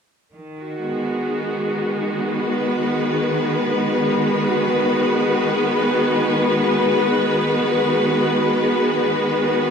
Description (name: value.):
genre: ambient.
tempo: free time.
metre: none.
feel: none.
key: unclear.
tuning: A4 = 439 Hz.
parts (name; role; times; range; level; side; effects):
clear studio string section; solo; 0.3-9.7 s; D#3 to B4; -17 LUFS; equal; ping-pong delay.
room: wet lush hall reverb, RT60 2.9 s.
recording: dreamy mix soaked in reverb, cassette tape.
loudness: -17 LUFS.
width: side -6 dB against mid.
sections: 0.3-9.7 A section.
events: none.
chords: 0.3 G#m7.